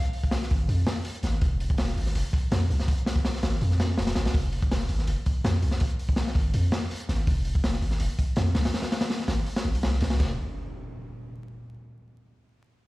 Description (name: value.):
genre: drum and bass, jungle.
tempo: 164 BPM.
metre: 4/4.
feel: straight.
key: F minor.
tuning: A4 = 440 Hz.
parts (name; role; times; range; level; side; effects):
soft synth bell; melody; 0.0-0.5 s; F5; -44 LUFS; left 3 dB; chorus, vintage 12-bit sampler grit, dub echo.
crunchy breakbeat drum kit; drums; 0.0-10.3 s; crash cymbal, hi-hat, kick drum, snare drum; -26 LUFS; equal; none.
long sustained 808-style bass; bass; 0.5-10.4 s; Eb1 to F2; -25 LUFS; equal; none.
impact; sound effects; 10.3-11.7 s; none; -37 LUFS; equal; none.
room: small room ambience.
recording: played on a big sound system in a bare room, large studio reverb, vinyl crackle.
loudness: -24 LUFS.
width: side -20 dB against mid.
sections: 0.0-10.2 A section; 10.2-11.7 B section.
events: filter sweep on 808-style bass 0.0-10.2.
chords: 0.0 Fm; 10.2 N.C..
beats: 0.32 0.69 1.05 | 1.42 1.78 2.15 2.52 | 2.88 3.25 3.61 3.98 | 4.34 4.71 5.08 5.44 | 5.81 6.17 6.54 6.91 | 7.27 7.64 8.00 8.37 | 8.73 9.10 9.47 9.83 | 10.20 10.56 10.93 11.30.